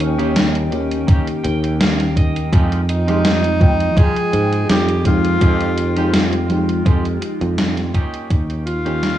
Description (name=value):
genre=vaporwave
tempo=83 BPM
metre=4/4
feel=swing 53% on 16ths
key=F minor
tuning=A4 = 440 Hz
part: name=FM electric piano with soft pad layer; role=accompaniment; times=0.0-9.2 s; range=Eb3 to G5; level=-22 LUFS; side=left 1 dB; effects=lush chorus, tape echo
part: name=warbly tape-like pad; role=sustained chords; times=0.0-9.2 s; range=Ab3 to G5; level=-31 LUFS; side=left 1 dB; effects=chorus, built-in reverb, phaser
part: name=sustaining fretless electric bass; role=bass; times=0.0-9.2 s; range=C2 to Ab2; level=-20 LUFS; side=equal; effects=none
part: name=gated 80s digital drum machine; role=drums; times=0.0-9.2 s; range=hi-hat, snare drum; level=-20 LUFS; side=equal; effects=gated reverb, gated reverb snare
part: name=clean electric guitar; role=riff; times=0.2-9.1 s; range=Ab3 to G5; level=-30 LUFS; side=right 3 dB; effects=wide subtle chorus, vintage 12-bit sampler grit, tape echo
part: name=electronic kick drum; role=drums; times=1.1-8.5 s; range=none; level=-14 LUFS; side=equal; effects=none
part: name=clear tenor saxophone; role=melody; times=2.9-9.2 s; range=Eb4 to Ab4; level=-22 LUFS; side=right 1 dB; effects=vintage 12-bit sampler grit, tape echo
room=little or no reverb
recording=dry, gritty hardware recording, cassette tape, small room ambience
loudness=-14 LUFS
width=side -12 dB against mid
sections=0.0-9.2 A section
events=clean electric guitar fill 1.1-2.5; fade-out 6.4-9.2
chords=0.0 Eb7; 2.5 Fm9; 7.9 Eb7